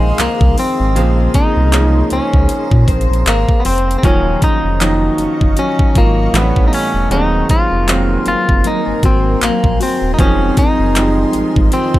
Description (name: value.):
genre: contemporary R&B.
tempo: 78 BPM.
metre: 4/4.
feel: swing 58% on 16ths.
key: Eb dorian.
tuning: A4 = 440 Hz.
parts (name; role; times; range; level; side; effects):
clean electric guitar; melody; 0.0-12.0 s; Ab3 to F4; -17 LUFS; left 1 dB; tape echo.
bright baby grand piano; accompaniment; 0.0-12.0 s; Db3 to C5; -20 LUFS; right 3 dB; none.
granular cloud pad; sustained chords; 0.0-12.0 s; Gb3 to Db6; -24 LUFS; equal; built-in reverb, sidechain pumping.
nylon-string guitar; arpeggios; 0.0-12.0 s; F2 to C5; -22 LUFS; left 4 dB; none.
sub bass with octave; bass; 0.0-12.0 s; Eb1 to Bb2; -16 LUFS; equal; none.
trap drum kit; drums; 0.2-12.0 s; handclaps, hi-hat, kick drum; -14 LUFS; equal; none.
room: little or no reverb.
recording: none.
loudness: -11 LUFS.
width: side -16 dB against mid.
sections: 0.0-12.0 A section.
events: none.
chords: 0.0 Fm7; 1.0 Bbm9; 4.0 Ebm9; 6.3 A9; 7.1 Ab9/Eb; 10.2 Fm7.